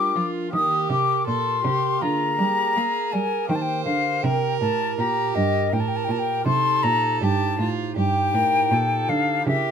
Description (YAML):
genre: classical, baroque-style sonata movement with continuo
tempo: 80 BPM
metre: 4/4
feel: rubato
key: unclear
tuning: A4 = 440 Hz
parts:
  - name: mellow silver concert flute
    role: melody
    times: 0.0-9.7 s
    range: Eb5 to Eb6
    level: -22 LUFS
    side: left 5 dB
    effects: none
  - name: rich violin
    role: second line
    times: 0.0-9.7 s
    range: F4 to C5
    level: -28 LUFS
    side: right 9 dB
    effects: none
  - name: pipe organ, stopped flute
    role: accompaniment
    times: 0.0-9.7 s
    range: G2 to C5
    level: -30 LUFS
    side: right 1 dB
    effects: none
  - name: warm cello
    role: bass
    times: 0.0-9.7 s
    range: G2 to Bb3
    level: -26 LUFS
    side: right 3 dB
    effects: none
room: moderate studio reverb, RT60 0.5 s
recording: minimal, uncompressed stereo recording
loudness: -20 LUFS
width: side -7 dB against mid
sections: 0.0-9.7 A section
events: none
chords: 0.0 Bb; 0.5 Eb; 2.0 Bb7/D; 3.5 Eb